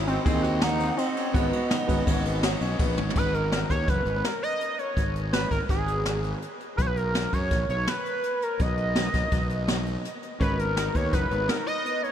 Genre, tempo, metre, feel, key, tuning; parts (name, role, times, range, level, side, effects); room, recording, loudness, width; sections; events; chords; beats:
progressive instrumental, band music in an uneven meter; 166 BPM; 5/4; straight; G# minor; A4 = 439 Hz
bright concert grand piano; arpeggios; 0.0-3.1, 10.4-12.1 s; B3 to G#4; -34 LUFS; left 4 dB; diffuse ambient delay
fuzz fingered electric bass; bass; 0.0-11.5 s; F#1 to F#2; -28 LUFS; equal; overdrive
lead with added fifth; melody; 0.1-12.1 s; B3 to D#5; -28 LUFS; equal; chorus, diffuse ambient delay
bright reedy polished pan flute; second line; 0.1-2.8 s; D#5 to F#5; -35 LUFS; right 2 dB; diffuse ambient delay
jazz brush drum kit; drums; 0.1-12.1 s; crash cymbal, hi-hat, kick drum, ride cymbal, snare drum, toms; -28 LUFS; equal
overdriven tine electric piano; accompaniment; 1.3-2.0, 10.4-10.7 s; G#3 to B4; -40 LUFS; right 5 dB
moderate huge ambient reverb, RT60 7.9 s; dreamy mix soaked in reverb; -23 LUFS; side -9 dB against mid
0.0-3.2 A section; 3.2-12.1 B section
drum fill 3.0
0.0 G#7; 1.3 G#m7; 3.2 G#m9; 6.8 Bmaj7; 10.4 G#m9
0.25 0.62 0.98 | 1.34 1.70 2.06 2.43 2.79 | 3.15 3.52 3.88 4.24 4.60 | 4.97 5.33 5.69 6.05 6.42 | 6.78 7.14 7.50 7.87 8.23 | 8.59 8.95 9.31 9.68 10.04 | 10.40 10.76 11.13 11.49 11.85